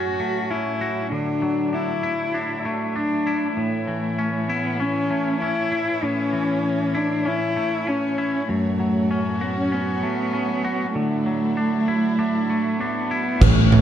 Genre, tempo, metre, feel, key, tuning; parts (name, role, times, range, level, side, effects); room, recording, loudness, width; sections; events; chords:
post-rock; 98 BPM; 4/4; straight; A4 = 445 Hz
warm cello; melody; 0.0-13.8 s; A3 to F#4; -23 LUFS; left 1 dB; tape echo
clear studio string section; sustained chords; 0.0-13.8 s; A2 to C#6; -30 LUFS; right 3 dB
twangy electric guitar; arpeggios; 0.0-13.8 s; F#2 to F#4; -26 LUFS; left 1 dB; tape echo
felt-muted upright piano; arpeggios; 13.4-13.8 s; B4; -30 LUFS; right 12 dB; tape echo
modern bright fingered electric bass; bass; 13.4-13.8 s; A1; -17 LUFS; right 1 dB
huge arena drum kit; drums; 13.4-13.8 s; crash cymbal, kick drum, toms; -14 LUFS; right 2 dB
light reverb, studio reverb; dark, warm production, faint mains hum; -20 LUFS; side -10 dB against mid
0.0-13.4 A section
0.0 F#m; 1.1 Dadd9; 3.6 A; 8.5 F#m; 11.0 Dadd9